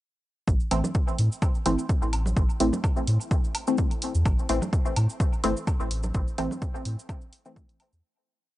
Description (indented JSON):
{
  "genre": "dub techno",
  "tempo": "127 BPM",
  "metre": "4/4",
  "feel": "swing 54% on 16ths",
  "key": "A minor",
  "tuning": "A4 = 440 Hz",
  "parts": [
    { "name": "soft dub sub bass", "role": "bass", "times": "0.5-8.0 s", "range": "G1 to A2", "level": "-25 LUFS", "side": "equal", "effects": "sidechain pumping" },
    { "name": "electronic kick drum", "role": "drums", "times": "0.5-7.7 s", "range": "none", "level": "-25 LUFS", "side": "equal", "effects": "none" },
    { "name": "cabasa", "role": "percussion", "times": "0.5-8.0 s", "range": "none", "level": "-44 LUFS", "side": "right 3 dB", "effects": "none" },
    { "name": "filtered dub chord stab", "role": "stabs", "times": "0.7-8.0 s", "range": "E3 to C4", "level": "-29 LUFS", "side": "left 1 dB", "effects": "chorus, phaser, sidechain pumping, dub echo" },
    { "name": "electronic hi-hat", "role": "drums", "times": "0.7-7.9 s", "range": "none", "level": "-33 LUFS", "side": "right 2 dB", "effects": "none" },
    { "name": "woodblock and congas", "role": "percussion", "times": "0.7-7.9 s", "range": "none", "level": "-36 LUFS", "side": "right 1 dB", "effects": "sidechain pumping on perc, dub echo" }
  ],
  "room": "digital ambience",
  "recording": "dry, gritty hardware recording, nothing above 10.4 kHz",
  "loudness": "-23 LUFS",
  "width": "side -16 dB against mid",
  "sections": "0.5-8.0 groove",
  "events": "fade-out 5.5-8.0",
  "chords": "0.5 Am",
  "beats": "| 0.48 0.95 1.42 1.89 | 2.37 2.84 3.31 3.78 | 4.26 4.73 5.20 5.67 | 6.15 6.62 7.09 7.56"
}